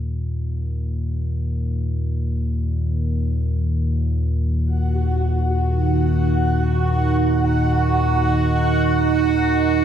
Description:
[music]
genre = ambient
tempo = free time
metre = none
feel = none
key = Eb minor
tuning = A4 = 440 Hz
[part]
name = deep rumbling drone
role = drone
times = 0.0-9.8 s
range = Eb2 to Bb2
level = -20 LUFS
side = equal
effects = built-in reverb
[part]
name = deep dark ambient pad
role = sustained chords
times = 5.3-9.8 s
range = Eb4 to Bb5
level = -21 LUFS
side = right 4 dB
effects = chorus, built-in reverb
[part]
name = bubbling stepped-filter texture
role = texture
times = 4.7-9.8 s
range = Gb4 to Gb5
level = -23 LUFS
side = equal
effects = chorus, built-in reverb
[sound]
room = moderate plate reverb, RT60 2.8 s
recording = dreamy mix soaked in reverb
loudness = -18 LUFS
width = side -9 dB against mid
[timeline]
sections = 0.0-9.8 A section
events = none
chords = 0.0 Ebm

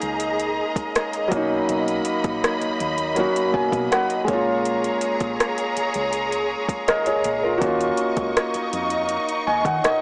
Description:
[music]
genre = contemporary R&B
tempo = 81 BPM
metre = 4/4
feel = straight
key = unclear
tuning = A4 = 445 Hz
[part]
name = felt-muted upright piano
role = accompaniment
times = 0.0-10.0 s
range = F#3 to G#5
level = -25 LUFS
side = equal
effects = none
[part]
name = rich studio string section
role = sustained chords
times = 0.0-10.0 s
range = A#3 to C#6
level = -28 LUFS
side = equal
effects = none
[part]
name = deep dub fingered electric bass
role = bass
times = 0.0-9.8 s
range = A#1 to D#3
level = -38 LUFS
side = equal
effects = none
[part]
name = smooth R&B drum kit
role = drums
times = 0.0-10.0 s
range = hi-hat, kick drum, rim click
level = -27 LUFS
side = equal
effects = overdrive
[sound]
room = light reverb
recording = small speaker sound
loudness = -22 LUFS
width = mono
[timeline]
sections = 0.0-10.0 A section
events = felt piano fill 3.2-4.7, 9.1-10.0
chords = 0.0 F#69 (rootless); 1.3 Bmaj7; 4.3 A#m7; 7.6 D#m7

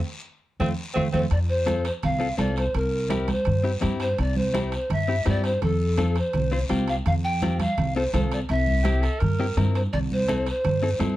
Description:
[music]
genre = latin, cumbia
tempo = 167 BPM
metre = 4/4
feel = straight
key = F major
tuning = A4 = 435 Hz
[part]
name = warm tenor saxophone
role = second line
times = 0.6-1.2, 8.8-9.6 s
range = C4 to Bb4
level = -30 LUFS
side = right 3 dB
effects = none
[part]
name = direct-recorded clean electric guitar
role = accompaniment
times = 0.6-11.2 s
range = A3 to C5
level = -29 LUFS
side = left 4 dB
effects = none
[part]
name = upright bass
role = bass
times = 0.6-11.2 s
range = C2 to G2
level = -25 LUFS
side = equal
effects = none
[part]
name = congas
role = percussion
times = 0.6-11.2 s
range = none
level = -29 LUFS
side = right 3 dB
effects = none
[part]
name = guiro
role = percussion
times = 0.6-11.2 s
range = none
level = -41 LUFS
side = left 3 dB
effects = none
[part]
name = breathy polished pan flute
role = melody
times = 1.1-11.0 s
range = A4 to G5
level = -27 LUFS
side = equal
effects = none
[part]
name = timbales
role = percussion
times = 1.3-11.2 s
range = none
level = -38 LUFS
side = right 7 dB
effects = none
[sound]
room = light reverb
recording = dark, warm production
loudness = -21 LUFS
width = side -15 dB against mid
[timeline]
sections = 0.0-1.3 A section; 1.3-11.2 B section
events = band accent 0.0-1.3; tenor saxophone solo 0.0-1.3; drum fill 0.8-1.3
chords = 0.0 F; 2.8 C; 5.6 F; 8.5 C

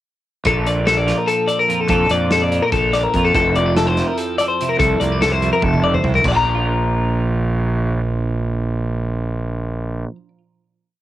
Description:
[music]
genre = math rock and midwest emo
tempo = 290 BPM (eighths)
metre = 7/8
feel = straight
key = Bb lydian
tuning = A4 = 440 Hz
[part]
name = loose indie drum kit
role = drums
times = 0.4-6.3 s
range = hi-hat, kick drum, snare drum, splash cymbal, toms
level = -24 LUFS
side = right 1 dB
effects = cassette tape
[part]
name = twelve-string electric guitar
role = accompaniment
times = 0.5-10.4 s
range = F2 to A4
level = -23 LUFS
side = right 6 dB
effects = spring reverb, cassette tape
[part]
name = twelve-string electric guitar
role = arpeggios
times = 0.5-10.2 s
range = A4 to Bb5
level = -17 LUFS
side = left 4 dB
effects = cassette tape
[part]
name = fuzz fingered electric bass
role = bass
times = 0.5-10.0 s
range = F1 to F2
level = -20 LUFS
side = right 1 dB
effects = overdrive
[sound]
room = studio reverb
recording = home recording on cassette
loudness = -15 LUFS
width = side -14 dB against mid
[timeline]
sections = 0.5-6.2 A section; 6.2-9.1 final chord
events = drum fill 5.6-6.2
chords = 0.5 Bbmaj7; 3.3 Fmaj7; 6.2 Bb

